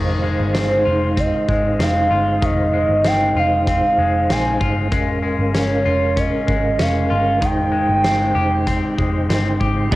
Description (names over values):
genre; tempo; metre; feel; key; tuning
dream pop; 96 BPM; 4/4; straight; F minor; A4 = 440 Hz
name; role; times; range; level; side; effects
mellow tonewheel organ; sustained chords; 0.0-10.0 s; Ab3 to Bb5; -22 LUFS; equal; chorus vibrato, fast rotary speaker, cassette tape
clean electric guitar; arpeggios; 0.0-10.0 s; Eb3 to G4; -25 LUFS; left 6 dB; wide subtle chorus, cassette tape, analog delay
vintage muted picked electric bass; bass; 0.0-10.0 s; F1 to Bb1; -22 LUFS; equal; none
huge arena drum kit; drums; 0.5-10.0 s; crash cymbal, hi-hat, kick drum, snare drum; -24 LUFS; equal; cassette tape
hollow clarinet-like synth lead; melody; 0.6-9.3 s; C5 to Ab5; -20 LUFS; right 1 dB; chorus, cassette tape, analog delay
clean electric guitar; accompaniment; 9.9-10.0 s; Bb2 to Ab3; -20 LUFS; right 6 dB; tremolo, wide subtle chorus, cassette tape
room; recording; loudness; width
light reverb, small room ambience; home recording on cassette; -15 LUFS; side -17 dB against mid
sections
0.0-9.9 A section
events
none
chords
0.0 Fm7; 4.9 Bbm7/F; 7.4 Abmaj7/F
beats
0.55 1.17 1.80 | 2.42 3.05 3.67 4.30 | 4.92 5.55 6.17 6.80 | 7.42 8.05 8.67 9.30 | 9.92